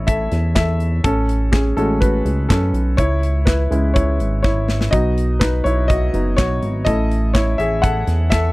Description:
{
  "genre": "piano-driven pop",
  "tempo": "124 BPM",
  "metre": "4/4",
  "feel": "straight",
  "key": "A lydian",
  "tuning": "A4 = 440 Hz",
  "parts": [
    { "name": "clear concert grand piano", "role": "accompaniment", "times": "0.0-8.5 s", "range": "F#3 to F#5", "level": "-20 LUFS", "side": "left 1 dB", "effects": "none" },
    { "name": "chorused synth bass", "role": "bass", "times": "0.0-8.5 s", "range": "F#1 to F#2", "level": "-18 LUFS", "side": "equal", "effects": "none" },
    { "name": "modern studio drum kit", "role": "drums", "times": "0.1-8.4 s", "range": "handclaps, hi-hat, kick drum, snare drum", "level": "-18 LUFS", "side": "equal", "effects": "none" }
  ],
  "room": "little or no reverb",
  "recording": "dry, close 1970s-style studio recording",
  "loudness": "-15 LUFS",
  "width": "side -21 dB against mid",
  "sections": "0.0-8.5 A section",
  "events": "grand piano solo 0.0-8.5; drum fill 4.4-4.9",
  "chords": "0.0 A; 1.0 F#madd9/A; 3.0 C#m; 4.9 B; 6.9 A"
}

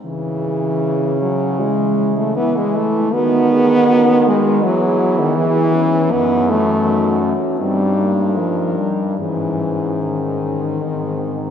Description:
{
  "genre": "classical, lyrical piece for horn quartet",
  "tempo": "79 BPM",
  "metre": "4/4",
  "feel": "uneven beats, rubato",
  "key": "C# minor",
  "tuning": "A4 = 436 Hz",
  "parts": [
    { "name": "warm French horn", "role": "melody", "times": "0.0-11.5 s", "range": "B3 to A#4", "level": "-26 LUFS", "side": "left 4 dB", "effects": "none" },
    { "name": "mellow French horn", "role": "second line", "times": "0.0-11.5 s", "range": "A#3 to G#4", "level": "-23 LUFS", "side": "right 5 dB", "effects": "none" },
    { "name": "mellow French horn", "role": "accompaniment", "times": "0.0-11.5 s", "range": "D#3 to B3", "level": "-16 LUFS", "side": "left 1 dB", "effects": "none" },
    { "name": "clear French horn", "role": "bass", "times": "0.0-11.5 s", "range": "F#2 to E3", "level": "-22 LUFS", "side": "right 1 dB", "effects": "none" }
  ],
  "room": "wet cathedral reverb, RT60 5.6 s",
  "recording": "heard from further back in the room",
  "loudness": "-14 LUFS",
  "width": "side -8 dB against mid",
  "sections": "0.0-11.5 A section",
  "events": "none",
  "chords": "0.0 C#m; 3.1 B/D#; 4.6 E; 6.1 D#dim/F#; 7.6 D#/G; 9.2 G#sus4; 10.8 G#"
}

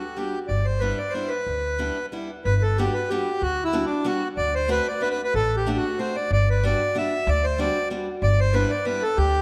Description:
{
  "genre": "musette waltz",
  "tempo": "186 BPM",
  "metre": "3/4",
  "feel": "swing 54% on 8ths",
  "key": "G major",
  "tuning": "A4 = 440 Hz",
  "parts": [
    { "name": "accordion", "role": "melody", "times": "0.0-9.4 s", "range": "D4 to E5", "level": "-26 LUFS", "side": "equal", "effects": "none" },
    { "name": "picked steel-string acoustic guitar", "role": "accompaniment", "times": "0.0-9.0 s", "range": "G3 to F#4", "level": "-33 LUFS", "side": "equal", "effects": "none" },
    { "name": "upright bass", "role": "bass", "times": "0.5-9.4 s", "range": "G1 to D2", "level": "-26 LUFS", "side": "equal", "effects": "none" }
  ],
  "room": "moderate scoring stage reverb, RT60 1.8 s",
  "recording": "dark, warm production",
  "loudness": "-24 LUFS",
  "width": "mono",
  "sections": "0.0-2.4 A section; 2.4-9.4 A section",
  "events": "break 2.1-2.4",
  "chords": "0.5 G6; 2.4 Gmaj7; 4.4 D7; 6.3 Gmaj7; 8.2 G6"
}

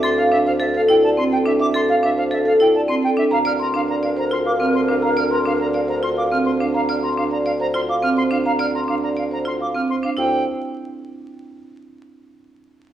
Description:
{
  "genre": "classical, minimalist pattern music",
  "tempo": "105 BPM",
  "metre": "3/4",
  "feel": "straight",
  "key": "D minor",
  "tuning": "A4 = 440 Hz",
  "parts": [
    { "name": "vibraphone with soft mallets", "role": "melody", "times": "0.0-10.4 s", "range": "A4 to C6", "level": "-21 LUFS", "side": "left 1 dB", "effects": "none" },
    { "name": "marimba with hard mallets", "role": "arpeggios", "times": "0.0-10.4 s", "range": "C4 to D5", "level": "-22 LUFS", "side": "right 3 dB", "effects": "none" },
    { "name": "silver concert flute", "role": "arpeggios", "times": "0.0-10.4 s", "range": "E5 to F6", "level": "-25 LUFS", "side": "right 1 dB", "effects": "none" },
    { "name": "mellow bassoon", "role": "bass", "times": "0.0-10.4 s", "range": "D2", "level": "-25 LUFS", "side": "left 1 dB", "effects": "none" },
    { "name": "bright wooden-headed alto flute", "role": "second line", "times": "3.3-6.6 s", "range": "Bb4", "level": "-24 LUFS", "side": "left 2 dB", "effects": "none" }
  ],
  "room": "wet recital hall reverb, RT60 1.8 s",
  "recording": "vinyl crackle, small room ambience",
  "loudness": "-16 LUFS",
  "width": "side -11 dB against mid",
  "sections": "0.0-10.2 A section; 10.2-11.9 B section",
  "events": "none",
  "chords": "0.0 D7sus2; 3.3 Bb/D; 10.2 Dsus4"
}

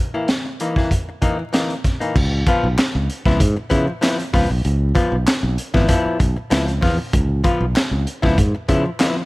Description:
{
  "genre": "funk",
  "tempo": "96 BPM",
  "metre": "4/4",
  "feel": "straight",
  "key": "Db mixolydian",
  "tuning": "A4 = 440 Hz",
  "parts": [
    { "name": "archtop guitar, miked and amplified", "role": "accompaniment", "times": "0.1-9.2 s", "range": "Fb3 to F4", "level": "-22 LUFS", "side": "left 2 dB", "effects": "none" },
    { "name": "crunchy breakbeat drum kit", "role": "drums", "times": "0.3-9.2 s", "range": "crash cymbal, hi-hat, kick drum, snare drum", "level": "-19 LUFS", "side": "equal", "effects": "none" },
    { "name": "modern bright fingered electric bass", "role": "bass", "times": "2.2-8.8 s", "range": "Ab1 to Db3", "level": "-19 LUFS", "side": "equal", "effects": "none" },
    { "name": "group handclap", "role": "percussion", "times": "2.8-9.2 s", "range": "none", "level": "-29 LUFS", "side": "equal", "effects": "none" }
  ],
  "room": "small room ambience",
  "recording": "vinyl crackle",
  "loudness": "-16 LUFS",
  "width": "side -21 dB against mid",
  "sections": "0.0-2.2 A section; 2.2-9.3 B section",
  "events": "none",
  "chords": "0.0 Eb5; 2.2 Db7#9"
}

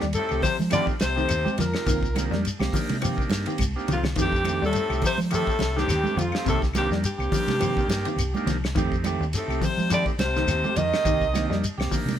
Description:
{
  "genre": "afrobeat",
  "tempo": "105 BPM",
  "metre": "4/4",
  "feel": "swing 56% on 16ths",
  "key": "F mixolydian",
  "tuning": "A4 = 440 Hz",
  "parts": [
    { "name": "semi-hollow electric guitar", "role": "arpeggios", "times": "0.0-12.1 s", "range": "C3 to G3", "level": "-31 LUFS", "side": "left 5 dB", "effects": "none" },
    { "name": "semi-hollow electric guitar", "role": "stabs", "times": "0.0-11.9 s", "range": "Eb3 to G4", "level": "-32 LUFS", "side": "right 5 dB", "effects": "none" },
    { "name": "hollow-body short-scale fingered electric bass", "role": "bass", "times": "0.0-12.2 s", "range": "C2 to F3", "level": "-29 LUFS", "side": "equal", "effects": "none" },
    { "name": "damped 70s drum kit", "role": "drums", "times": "0.0-12.2 s", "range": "hi-hat, kick drum, ride cymbal, snare drum", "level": "-30 LUFS", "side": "equal", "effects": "none" },
    { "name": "shekere", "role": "percussion", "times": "0.0-12.2 s", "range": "none", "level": "-33 LUFS", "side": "left 2 dB", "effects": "none" },
    { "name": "bright alto saxophone", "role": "melody", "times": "0.1-11.6 s", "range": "F4 to Eb5", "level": "-27 LUFS", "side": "left 1 dB", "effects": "none" },
    { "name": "combo organ", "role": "accompaniment", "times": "0.1-12.2 s", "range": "A3 to G4", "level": "-35 LUFS", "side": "right 2 dB", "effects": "none" },
    { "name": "breathy trumpet", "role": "second line", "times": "0.2-11.6 s", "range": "F4 to Eb5", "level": "-36 LUFS", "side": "right 2 dB", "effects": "none" },
    { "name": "raspy baritone saxophone", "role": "second line", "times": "0.2-11.6 s", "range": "F2 to Eb3", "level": "-34 LUFS", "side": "left 3 dB", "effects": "none" },
    { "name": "claves", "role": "percussion", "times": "0.3-11.9 s", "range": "none", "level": "-42 LUFS", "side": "left 7 dB", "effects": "none" },
    { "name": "congas", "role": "percussion", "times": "0.4-12.2 s", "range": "none", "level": "-31 LUFS", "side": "right 4 dB", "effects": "none" }
  ],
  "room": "moderate stone room reverb, RT60 1.1 s",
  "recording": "band playing live in one room",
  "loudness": "-22 LUFS",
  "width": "side -10 dB against mid",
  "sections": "0.0-12.2 A section",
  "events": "drum fill 3.6-4.2",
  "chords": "0.0 F9; 1.9 Cm7; 4.2 F9; 6.5 Cm7; 8.8 F9; 11.1 Cm7"
}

